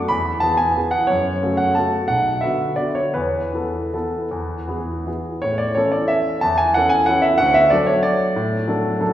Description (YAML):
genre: classical, piano waltz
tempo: 151-200 BPM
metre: 3/4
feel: rubato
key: A major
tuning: A4 = 440 Hz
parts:
  - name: warm grand piano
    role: solo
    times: 0.0-9.1 s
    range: B1 to B5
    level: -17 LUFS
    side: equal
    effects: none
room: wet recital hall reverb, RT60 1.7 s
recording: recorded in a church or concert hall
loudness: -17 LUFS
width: side -11 dB against mid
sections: 0.0-5.4 A section; 5.4-9.1 B section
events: none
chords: 0.1 E; 1.1 F#m; 2.1 Bm; 3.2 Esus4; 4.3 E; 5.4 A; 7.4 D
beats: | 0.11 0.43 0.77 | 1.09 1.42 1.76 | 2.09 2.42 2.78 | 3.15 3.54 3.93 | 4.31 4.68 5.07 | 5.44 5.77 6.11 | 6.43 6.75 7.08 | 7.40 7.72 8.06 | 8.37 8.68 9.01